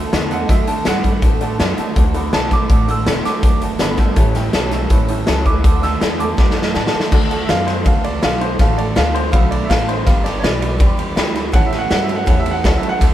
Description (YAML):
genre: rockabilly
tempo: 163 BPM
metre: 4/4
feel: straight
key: D major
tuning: A4 = 440 Hz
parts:
  - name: honky-tonk upright piano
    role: accompaniment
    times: 0.0-13.1 s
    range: C#5 to B5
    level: -29 LUFS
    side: left 2 dB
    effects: none
  - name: picked steel-string acoustic guitar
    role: accompaniment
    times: 0.0-13.1 s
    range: A2 to B4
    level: -27 LUFS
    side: left 3 dB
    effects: none
  - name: electric guitar through a small old amp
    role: riff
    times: 0.0-13.1 s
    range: G2 to B3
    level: -24 LUFS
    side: right 4 dB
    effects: spring reverb
  - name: upright bass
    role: bass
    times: 0.0-13.1 s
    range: E1 to A2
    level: -22 LUFS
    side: equal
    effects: none
  - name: raw garage drum kit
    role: drums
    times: 0.1-13.1 s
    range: crash cymbal, hi-hat, kick drum, ride cymbal, snare drum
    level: -16 LUFS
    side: equal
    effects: none
  - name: bright upright piano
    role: melody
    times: 0.3-13.0 s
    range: C5 to E6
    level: -22 LUFS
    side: right 2 dB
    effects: none
room: light reverb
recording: band playing live in one room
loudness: -14 LUFS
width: side -12 dB against mid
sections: 0.0-7.1 A section; 7.1-13.1 B section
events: drum fill 6.4-7.1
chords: 0.0 D; 4.2 A7; 5.6 D; 10.1 G; 11.5 A7